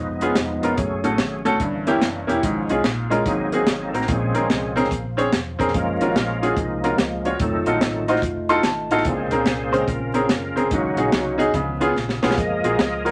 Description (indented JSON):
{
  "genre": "uptempo gospel",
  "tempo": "145 BPM",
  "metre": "4/4",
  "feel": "swing 64% on 8ths",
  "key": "Db major",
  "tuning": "A4 = 440 Hz",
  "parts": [
    { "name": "bright tonewheel organ", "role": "sustained chords", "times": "0.0-13.1 s", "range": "Db3 to F5", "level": "-28 LUFS", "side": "equal", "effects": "fast rotary speaker, chorus vibrato" },
    { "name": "hollow-body short-scale fingered electric bass", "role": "bass", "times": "0.0-13.1 s", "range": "Fb1 to Db2", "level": "-34 LUFS", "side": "equal", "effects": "none" },
    { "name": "bright baby grand piano", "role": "accompaniment", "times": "0.2-13.1 s", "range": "G2 to C6", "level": "-24 LUFS", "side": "equal", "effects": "none" },
    { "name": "tight funk drum kit", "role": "drums", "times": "0.2-13.1 s", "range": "hi-hat, kick drum, snare drum", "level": "-26 LUFS", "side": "equal", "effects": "none" },
    { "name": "dark French horn section", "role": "sustained chords", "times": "5.7-13.1 s", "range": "F3 to F4", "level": "-33 LUFS", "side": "equal", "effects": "none" }
  ],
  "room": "moderate club reverb, RT60 0.7 s",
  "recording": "vinyl crackle",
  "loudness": "-21 LUFS",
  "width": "mono",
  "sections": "0.0-13.1 A section",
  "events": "tonewheel organ solo 0.0-13.1; grand piano fill 8.2-9.1; drum fill 12.0-12.4",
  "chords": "0.0 Db7/F; 0.8 Gbm; 1.6 Gdim7; 2.4 Db/Ab; 3.3 Ab9; 4.1 Bbm9; 5.7 Gbmaj7; 7.4 F7b9; 9.1 Bbm9; 10.7 Ab7sus4; 11.5 Db7; 12.4 Gbmaj9",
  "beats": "0.36 | 0.78 1.19 1.60 2.02 | 2.43 2.85 3.26 3.67 | 4.09 4.50 4.92 5.33 | 5.74 6.16 6.57 6.98 | 7.40 7.81 8.23 8.64 | 9.05 9.47 9.88 10.30 | 10.71 11.13 11.54 11.96 | 12.38 12.79"
}